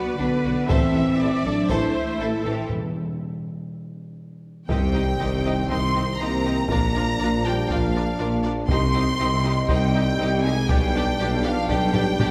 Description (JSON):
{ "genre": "cinematic, epic orchestral film score", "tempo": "120 BPM", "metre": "4/4", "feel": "straight", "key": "A dorian, C minor from 4.7 s", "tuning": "A4 = 440 Hz", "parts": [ { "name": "clear symphonic violin section", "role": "melody", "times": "0.0-12.3 s", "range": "D5 to C6", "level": "-31 LUFS", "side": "equal", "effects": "none" }, { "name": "clear symphonic viola section", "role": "accompaniment", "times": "0.0-12.3 s", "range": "C4 to E5", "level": "-34 LUFS", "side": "equal", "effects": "none" }, { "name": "mellow French horn section", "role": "sustained chords", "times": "0.0-12.3 s", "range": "F3 to F#4", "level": "-30 LUFS", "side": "equal", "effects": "none" }, { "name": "rich symphonic cello section", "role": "bass", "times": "0.0-12.3 s", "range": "Bb2 to B3", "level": "-31 LUFS", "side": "equal", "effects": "none" }, { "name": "rich symphonic violin section", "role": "second line", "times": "0.2-12.3 s", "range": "D4 to Eb5", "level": "-37 LUFS", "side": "equal", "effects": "none" }, { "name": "rich symphonic double bass section", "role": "bass", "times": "0.2-12.3 s", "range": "A1 to C2", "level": "-31 LUFS", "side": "equal", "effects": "none" }, { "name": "warm tuba", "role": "bass", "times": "0.2-12.3 s", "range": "A1 to C2", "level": "-31 LUFS", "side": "equal", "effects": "none" }, { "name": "clear trombone section", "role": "sustained chords", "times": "0.7-12.3 s", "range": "Eb3 to Eb4", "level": "-33 LUFS", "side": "equal", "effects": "none" }, { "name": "taiko ensemble", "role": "drums", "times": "0.7-12.3 s", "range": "none", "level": "-29 LUFS", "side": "equal", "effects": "none" }, { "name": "timpani", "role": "percussion", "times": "0.7-3.4 s", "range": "E2 to A2", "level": "-33 LUFS", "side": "equal", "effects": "none" }, { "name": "sub drop", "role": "sound effects", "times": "4.8-6.7 s", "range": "none", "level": "-36 LUFS", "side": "equal", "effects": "none" } ], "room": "wet scoring stage reverb, RT60 1.9 s", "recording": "none", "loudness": "-22 LUFS", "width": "mono", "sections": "0.0-4.7 A section; 4.7-12.3 B section", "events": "break 2.7-4.7; drum fill 3.9-4.7, 11.9-12.3; impact 4.7-6.7", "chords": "0.0 Bm; 0.7 Am; 2.7 N.C.; 4.7 Cm; 6.7 Bb; 8.7 Cm; 10.7 G/B", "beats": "0.19 | 0.69 1.19 1.69 2.19 | 2.69 3.19 3.69 4.19 | 4.69 5.19 5.69 6.19 | 6.69 7.19 7.69 8.19 | 8.69 9.19 9.69 10.19 | 10.69 11.19 11.69 12.19" }